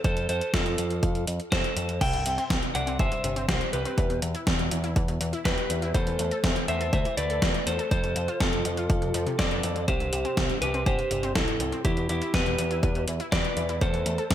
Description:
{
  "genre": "italo disco",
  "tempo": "122 BPM",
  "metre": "4/4",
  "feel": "straight",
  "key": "E minor",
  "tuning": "A4 = 440 Hz",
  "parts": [
    { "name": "lightly driven lead guitar", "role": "melody", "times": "0.0-14.3 s", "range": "E4 to G5", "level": "-29 LUFS", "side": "equal", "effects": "tape echo" },
    { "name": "picked electric bass with an envelope filter", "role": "bass", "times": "0.0-14.3 s", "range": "G1 to F2", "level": "-31 LUFS", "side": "equal", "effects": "none" },
    { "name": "electronic kick drum", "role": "drums", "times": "0.0-14.3 s", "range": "none", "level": "-27 LUFS", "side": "equal", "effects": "overdrive" },
    { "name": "gated 80s digital drum machine", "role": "drums", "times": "0.0-14.3 s", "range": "crash cymbal, hi-hat, snare drum", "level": "-30 LUFS", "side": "equal", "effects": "gated reverb, gated reverb snare, overdrive" },
    { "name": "wide unison pluck", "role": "arpeggios", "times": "2.0-14.3 s", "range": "G2 to A4", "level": "-34 LUFS", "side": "left 2 dB", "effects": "cassette tape, tape echo" }
  ],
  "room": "light reverb",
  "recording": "none",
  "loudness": "-24 LUFS",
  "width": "side -11 dB against mid",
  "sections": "0.0-14.3 A section",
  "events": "none",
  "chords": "0.0 F; 2.0 C; 4.0 Em; 5.9 Am/E; 7.9 F; 9.9 C; 11.8 Em; 13.8 Am/E"
}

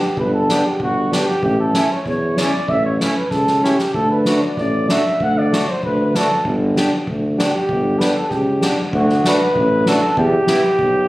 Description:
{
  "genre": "alpine folk, alpine dance band",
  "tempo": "96 BPM",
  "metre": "2/4",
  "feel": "straight",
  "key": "G major",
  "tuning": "A4 = 440 Hz",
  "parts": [
    { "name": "mellow flugelhorn", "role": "melody", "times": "0.0-11.1 s", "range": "F#4 to F#5", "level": "-19 LUFS", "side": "equal", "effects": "none" },
    { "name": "soft-mallet drum kit", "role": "drums", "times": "0.0-10.9 s", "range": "crash cymbal, kick drum, snare drum", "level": "-23 LUFS", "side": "equal", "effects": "none" },
    { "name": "warm tuba", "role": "bass", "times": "0.2-11.1 s", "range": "G1 to E2", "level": "-19 LUFS", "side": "equal", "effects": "none" },
    { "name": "accordion", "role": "accompaniment", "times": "0.5-10.6 s", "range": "A3 to G4", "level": "-19 LUFS", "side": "equal", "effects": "none" }
  ],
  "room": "light reverb",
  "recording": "recorded on a phone in the room, studio reverb",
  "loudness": "-15 LUFS",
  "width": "side -18 dB against mid",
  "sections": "0.0-8.9 A section; 8.9-11.1 B section",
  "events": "drum fill 3.3-3.9",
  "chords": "0.0 G; 1.4 A; 3.9 D; 6.4 G; 8.9 D; 10.2 Em"
}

